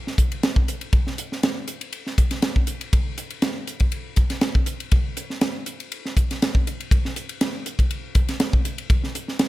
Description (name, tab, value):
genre	jazz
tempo	120 BPM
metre	4/4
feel	straight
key	none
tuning	none
part	crisp fusion drum kit	drums	0.1-9.5 s	hi-hat, kick drum, ride cymbal, snare drum	-21 LUFS	equal	none
room	little or no reverb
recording	none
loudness	-21 LUFS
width	side -17 dB against mid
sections	0.0-9.5 A section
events	none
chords	none